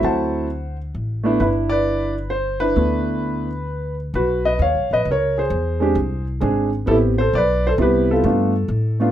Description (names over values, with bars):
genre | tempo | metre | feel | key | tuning
jazz | 132 BPM | 3/4 | swing 66% on 8ths | G major | A4 = 440 Hz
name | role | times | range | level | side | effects
warm concert grand piano | melody | 0.0-9.1 s | F#3 to A5 | -18 LUFS | right 1 dB | none
upright bass | bass | 0.0-9.1 s | G1 to A2 | -23 LUFS | left 1 dB | none
room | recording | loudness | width
moderate small room reverb, RT60 0.5 s | rough home demo mix | -17 LUFS | side -11 dB against mid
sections
0.0-4.1 A section; 4.1-9.1 B section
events
stop 3.7-4.1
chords
0.0 D9; 1.4 G6; 4.1 Badd9; 5.5 E7b13; 6.9 Am9; 8.2 G7